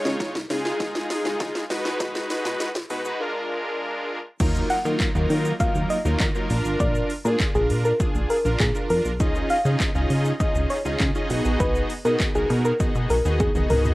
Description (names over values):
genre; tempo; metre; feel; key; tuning
dance-pop; 100 BPM; 4/4; straight; Eb minor; A4 = 440 Hz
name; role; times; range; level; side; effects
big bright polysynth; accompaniment; 0.0-13.9 s; Gb3 to Eb5; -26 LUFS; equal; sidechain pumping, cassette tape
plucky analog bass; bass; 0.1-13.9 s; Ab1 to Eb3; -24 LUFS; equal; sidechain pumping
house drum kit; drums; 0.1-13.9 s; crash cymbal, handclaps, hi-hat, kick drum, shaker, snare drum, toms; -26 LUFS; equal; overdrive, cassette tape
soft round pluck; melody; 4.7-13.8 s; Ab4 to Gb5; -25 LUFS; equal; chorus, sidechain pumping, cassette tape
room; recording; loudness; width
light reverb; home recording on cassette, high-pass filter, lossy compression artefacts; -21 LUFS; side -19 dB against mid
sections
0.0-4.4 A section; 4.4-13.9 B section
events
build-up 0.0-4.4; drum fill 0.0-3.2, 13.4-13.9; drop 4.4-13.9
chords
0.0 Dbadd9; 1.7 Abm7; 3.2 Bb7; 4.4 Ebmadd9; 6.5 Bb; 9.2 Dbadd9; 11.3 Abm7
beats
0.20 0.80 1.40 | 2.00 2.60 3.20 3.80 | 4.40 5.00 5.60 6.20 | 6.80 7.40 8.00 8.60 | 9.20 9.80 10.40 11.00 | 11.60 12.20 12.80 13.40